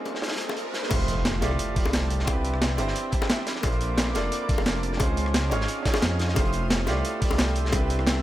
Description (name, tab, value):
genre	liquid drum and bass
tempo	176 BPM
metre	4/4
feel	straight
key	F major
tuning	A4 = 441 Hz
part	bright grand piano	accompaniment	0.0-8.2 s	A3 to D5	-30 LUFS	right 2 dB	dub echo
part	shimmering ambient pad	sustained chords	0.0-8.2 s	F3 to E6	-36 LUFS	equal	chorus, built-in reverb
part	riser and impact	sound effects	0.0-2.3 s	none	-34 LUFS	equal	none
part	crunchy breakbeat drum kit	drums	0.1-8.2 s	hi-hat, snare drum	-33 LUFS	equal	high-pass filter on hats, high-pass filter on snare, high-pass filter on room
part	bongos	percussion	0.1-7.8 s	none	-33 LUFS	left 3 dB	none
part	dark detuned saw bass	bass	0.9-8.2 s	F1 to F2	-27 LUFS	equal	none
part	breakbeat sampler-style drum kit	drums	0.9-8.2 s	crash cymbal, hi-hat, rim click, snare drum	-28 LUFS	equal	none
part	electronic kick drum	drums	0.9-7.8 s	none	-26 LUFS	equal	overdrive
room	light reverb, small room ambience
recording	none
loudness	-22 LUFS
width	side -14 dB against mid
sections	0.9-8.2 A section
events	riser 0.0-0.9; drop 0.9-8.2; impact 0.9-2.3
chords	0.0 Dbmaj9; 0.9 Fmaj9; 2.3 Cmaj9; 3.5 Bbmaj9; 5.0 Dbmaj9; 6.4 Fmaj9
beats	0.23 0.57 | 0.91 1.25 1.59 1.93 | 2.27 2.62 2.96 3.30 | 3.64 3.98 4.32 4.66 | 5.00 5.34 5.68 6.03 | 6.37 6.71 7.05 7.39 | 7.73 8.07